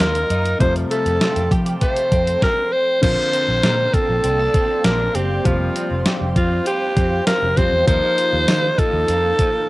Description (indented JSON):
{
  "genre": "1980s-style pop",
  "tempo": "99 BPM",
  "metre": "4/4",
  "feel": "straight",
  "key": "Bb major",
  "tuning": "A4 = 440 Hz",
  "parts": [
    { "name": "growling alto saxophone", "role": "melody", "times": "0.0-9.7 s", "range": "F4 to C5", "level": "-19 LUFS", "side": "equal", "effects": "cassette tape" },
    { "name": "clear baby grand piano", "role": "accompaniment", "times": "0.0-9.7 s", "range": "C3 to G4", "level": "-28 LUFS", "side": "left 2 dB", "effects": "cassette tape" },
    { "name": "granular cloud pad", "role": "sustained chords", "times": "0.1-9.7 s", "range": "Bb3 to C6", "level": "-31 LUFS", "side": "equal", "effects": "built-in reverb, cassette tape" },
    { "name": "direct-recorded clean electric guitar", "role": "riff", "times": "0.0-9.7 s", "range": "F3 to Bb4", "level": "-28 LUFS", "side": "right 3 dB", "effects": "ensemble chorus, cassette tape" },
    { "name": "vintage muted fingered electric bass", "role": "bass", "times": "0.0-9.3 s", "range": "F1 to F3", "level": "-22 LUFS", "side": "equal", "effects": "none" },
    { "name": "clean 12-bit digital drum machine", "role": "drums", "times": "0.0-9.5 s", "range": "crash cymbal, hi-hat, kick drum, snare drum, tambourine", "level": "-20 LUFS", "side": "equal", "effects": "cassette tape" }
  ],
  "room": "moderate booth ambience, RT60 0.2 s",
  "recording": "home recording on cassette",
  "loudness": "-15 LUFS",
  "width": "side -19 dB against mid",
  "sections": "0.0-3.0 A section; 3.0-9.7 B section",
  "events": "none",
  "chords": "0.0 Ebmadd9; 0.6 Fadd9; 3.0 Bbadd9; 5.5 Fsus2; 7.9 Ebsus2",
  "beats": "0.00 | 0.60 1.21 1.82 2.42 | 3.03 3.63 4.24 4.85 | 5.45 6.06 6.67 7.27 | 7.88 8.48 9.09"
}